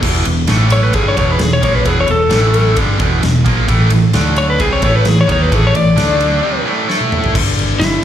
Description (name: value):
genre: hard rock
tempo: 131 BPM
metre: 4/4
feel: straight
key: unclear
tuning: A4 = 441 Hz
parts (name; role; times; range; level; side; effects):
- distorted electric guitar; riff; 0.0-7.3 s; E2 to A4; -18 LUFS; right 10 dB; overdrive, slapback echo
- heavy high-gain guitar; riff; 0.0-8.0 s; E2 to A4; -20 LUFS; left 10 dB; distortion, slapback echo
- picked electric bass; bass; 0.0-8.0 s; E1 to D#2; -15 LUFS; equal; none
- huge arena drum kit; drums; 0.0-7.9 s; crash cymbal, kick drum, ride cymbal, snare drum, toms; -18 LUFS; equal; none
- lightly driven lead guitar; melody; 0.7-8.0 s; E4 to D5; -17 LUFS; left 2 dB; slapback echo, analog delay
room: light reverb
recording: live gig heard through the venue's PA, club reverb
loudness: -11 LUFS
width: side -10 dB against mid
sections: 0.0-7.3 A section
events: lead electric guitar solo 0.0-7.3; break 6.4-7.3; drum fill 6.9-7.3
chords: 0.5 A5; 0.9 E5; 2.3 A5; 2.8 E5; 3.7 A5; 4.1 D5; 4.6 A5; 6.0 D5; 6.4 A5; 7.3 G5